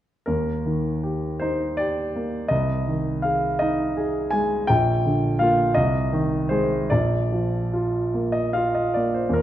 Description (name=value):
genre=classical, romantic nocturne for solo piano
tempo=48-57 BPM (dotted quarters)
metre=12/8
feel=rubato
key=Eb major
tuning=A4 = 440 Hz
part: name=warm grand piano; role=solo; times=0.3-9.4 s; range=Bb1 to Ab5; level=-20 LUFS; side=equal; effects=none
room=wet recital hall reverb, RT60 1.7 s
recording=dark, warm production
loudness=-20 LUFS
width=side -12 dB against mid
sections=0.3-9.4 A section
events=none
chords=0.3 Eb; 2.5 Ab/C; 4.7 Bb; 5.8 Ab/C; 6.9 Bb